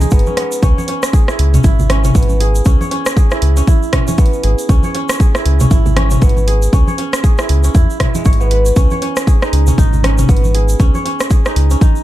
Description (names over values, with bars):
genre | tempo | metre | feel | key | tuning
afro house | 118 BPM | 4/4 | swing 59% on 16ths | C# minor | A4 = 439 Hz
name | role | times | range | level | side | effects
kora | arpeggios | 0.0-12.0 s | G#3 to C#5 | -19 LUFS | right 2 dB | sidechain pumping, digital delay
round analog bass | bass | 0.0-11.8 s | G#1 to E2 | -13 LUFS | equal | sidechain pumping
house drum kit | drums | 0.0-11.9 s | hi-hat, rim click, toms | -20 LUFS | left 1 dB | none
congas | percussion | 0.0-11.9 s | none | -22 LUFS | right 1 dB | none
tube shaker | percussion | 0.0-12.0 s | none | -29 LUFS | right 3 dB | none
electronic kick drum | drums | 0.1-11.9 s | none | -11 LUFS | equal | none
room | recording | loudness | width
little or no reverb | dark, warm production | -10 LUFS | side -14 dB against mid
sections
0.0-12.0 A section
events
none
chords
0.0 G#m; 0.6 C#m7